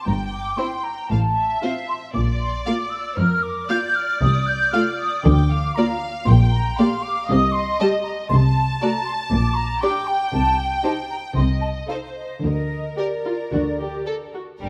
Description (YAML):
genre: quick classical-period movement for symphony orchestra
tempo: 116 BPM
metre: 4/4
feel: rubato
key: G minor from 6.3 s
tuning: A4 = 440 Hz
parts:
  - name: flute section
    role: second line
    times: 0.0-14.3 s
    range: D5 to G6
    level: -26 LUFS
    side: equal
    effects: none
  - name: rich studio violin section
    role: second line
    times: 0.0-14.7 s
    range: G3 to A5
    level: -32 LUFS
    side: equal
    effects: none
  - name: rich studio cello section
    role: bass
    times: 0.1-14.7 s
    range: F2 to D3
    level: -24 LUFS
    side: equal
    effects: none
  - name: rich studio double bass section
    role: bass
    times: 0.1-14.7 s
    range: G1 to D2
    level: -24 LUFS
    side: equal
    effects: none
  - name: clear studio violin section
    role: melody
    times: 0.6-14.7 s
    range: A4 to F5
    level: -34 LUFS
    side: equal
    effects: none
  - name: rich studio viola section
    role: accompaniment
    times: 0.6-14.7 s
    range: G3 to A4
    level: -26 LUFS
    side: equal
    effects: none
room: light reverb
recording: close, detailed microphones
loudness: -21 LUFS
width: mono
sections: 0.0-14.6 A section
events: none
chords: 0.1 C5/G; 1.1 F/A; 2.1 Bb; 4.2 F5/C; 5.2 Bb/D; 6.3 Gm/Bb; 7.3 Cm; 8.3 D7(no3)/C (rootless); 9.3 Gm/Bb; 10.3 C5; 11.4 Adim/C (rootless); 12.4 Gm/D (rootless); 13.5 N.C.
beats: | 0.07 0.59 1.11 1.63 | 2.15 2.67 3.18 3.70 | 4.21 4.73 5.25 5.76 | 6.27 6.78 7.29 7.80 | 8.30 8.81 9.32 9.83 | 10.33 10.84 11.36 11.89 | 12.43 12.98 13.53 14.06 | 14.61